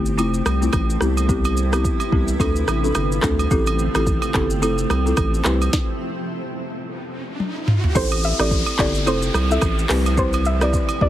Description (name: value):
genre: afrobeats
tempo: 108 BPM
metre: 4/4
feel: swing 58% on 16ths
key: unclear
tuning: A4 = 440 Hz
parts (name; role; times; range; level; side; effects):
- folk marimba with medium mallets; accompaniment; 0.0-11.1 s; A3 to B4; -24 LUFS; left 1 dB; none
- granular cloud pad; sustained chords; 0.0-11.1 s; A3 to E4; -29 LUFS; equal; built-in reverb, sidechain pumping
- saturated sub bass; bass; 0.0-11.1 s; F1 to D2; -21 LUFS; equal; none
- afro-pop drum kit; drums; 0.1-11.1 s; handclaps, hi-hat, kick drum, rim click, shaker, snare drum, toms; -22 LUFS; equal; none
- agogo bells; percussion; 0.2-11.0 s; none; -28 LUFS; right 6 dB; none
- riser and downlifter; sound effects; 6.7-11.1 s; none; -29 LUFS; equal; none
- soft round pluck; melody; 8.0-11.1 s; C5 to E5; -25 LUFS; equal; chorus, ping-pong delay
room: light reverb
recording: heavily compressed radio sound, multiband compression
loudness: -17 LUFS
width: side -12 dB against mid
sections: 0.0-8.0 A section; 8.0-11.1 B section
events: stop 5.7-8.0; riser 6.7-8.0; drum fill 7.4-8.0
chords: 0.2 Fmaj7; 1.0 Cmaj7; 2.4 Dm7; 3.5 Am7; 4.6 Fmaj7; 5.5 Cmaj7; 6.8 N.C.; 8.0 Am7; 9.1 Fmaj7; 9.9 Cmaj7